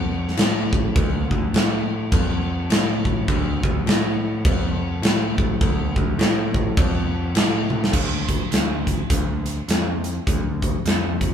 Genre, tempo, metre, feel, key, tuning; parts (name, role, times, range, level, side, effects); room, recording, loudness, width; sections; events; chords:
stoner and doom metal; 103 BPM; 4/4; swing 60% on 8ths; D minor; A4 = 439 Hz
growling picked electric bass; bass; 0.0-11.3 s; D2 to A2; -24 LUFS; equal; overdrive
big rock drum kit; drums; 0.3-11.3 s; crash cymbal, hi-hat, kick drum, snare drum, toms; -20 LUFS; equal
light reverb; band playing live in one room; -19 LUFS; side -8 dB against mid
0.0-7.9 A section; 7.9-11.3 B section
drum fill 7.7